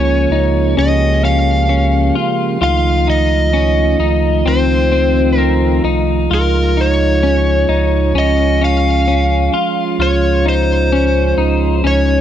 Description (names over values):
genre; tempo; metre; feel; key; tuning
dream pop; 65 BPM; 4/4; straight; Db lydian; A4 = 440 Hz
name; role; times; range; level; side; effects
overdriven slide guitar; melody; 0.0-12.2 s; Bb4 to F5; -17 LUFS; equal; ping-pong delay
mellow tonewheel organ; sustained chords; 0.0-12.2 s; Db3 to G4; -18 LUFS; right 4 dB; slow rotary speaker
clean electric guitar; arpeggios; 0.0-12.2 s; C4 to F4; -19 LUFS; left 6 dB; analog chorus, ping-pong delay
sub bass with octave; bass; 0.0-12.2 s; C2 to Db2; -16 LUFS; equal; none
room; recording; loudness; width
moderate plate reverb, RT60 2.5 s; none; -11 LUFS; side -10 dB against mid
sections
0.0-12.2 A section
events
none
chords
0.0 Bbm7/Db; 2.6 F7/Db; 6.3 Db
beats
0.77 1.69 | 2.61 3.54 4.46 5.38 | 6.31 7.23 8.15 9.07 | 10.00 10.92 11.85